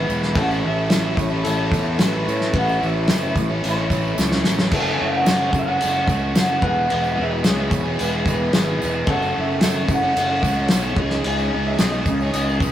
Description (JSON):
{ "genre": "indie rock", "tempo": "110 BPM", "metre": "4/4", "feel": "straight", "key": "unclear", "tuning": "A4 = 438 Hz", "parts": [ { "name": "electric guitar through a small old amp", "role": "melody", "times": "0.0-12.7 s", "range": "B4 to G#5", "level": "-25 LUFS", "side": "right 1 dB", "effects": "none" }, { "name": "bell-like tine electric piano", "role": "second line", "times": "0.0-12.7 s", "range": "G#4 to B4", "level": "-32 LUFS", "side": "left 6 dB", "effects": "none" }, { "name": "string machine, violas", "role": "sustained chords", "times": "0.0-12.7 s", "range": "G#4 to C#6", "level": "-34 LUFS", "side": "right 2 dB", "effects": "phaser, ensemble chorus" }, { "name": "biting overdriven guitar", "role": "riff", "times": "0.0-12.7 s", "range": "E2 to G#4", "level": "-26 LUFS", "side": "left 1 dB", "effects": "none" }, { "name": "fuzz fingered electric bass", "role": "bass", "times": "0.0-12.7 s", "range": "E1 to A2", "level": "-24 LUFS", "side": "right 1 dB", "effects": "overdrive" }, { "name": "tambourine", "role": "percussion", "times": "0.1-12.7 s", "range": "none", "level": "-37 LUFS", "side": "right 4 dB", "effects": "none" }, { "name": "cloth-damped thuddy drum kit", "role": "drums", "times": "0.2-12.7 s", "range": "crash cymbal, kick drum, snare drum", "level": "-21 LUFS", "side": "equal", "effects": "none" } ], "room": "light reverb", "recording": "rough rehearsal-room recording", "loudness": "-17 LUFS", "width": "side -11 dB against mid", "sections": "0.0-12.7 A section", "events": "drum fill 4.2-4.7", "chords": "0.4 A; 4.7 F#m; 6.6 E; 9.1 F#m; 11.0 C#sus2" }